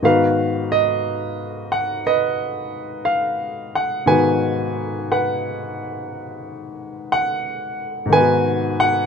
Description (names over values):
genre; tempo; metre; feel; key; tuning
solo jazz; 59 BPM; 4/4; swing 67% on 8ths; unclear; A4 = 440 Hz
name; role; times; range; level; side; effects
warm grand piano; solo; 0.0-9.1 s; Ab2 to Ab5; -18 LUFS; equal; none
room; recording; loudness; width
light reverb; minimal, uncompressed stereo recording; -18 LUFS; side -6 dB against mid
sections
0.0-9.1 A section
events
none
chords
0.0 Abm7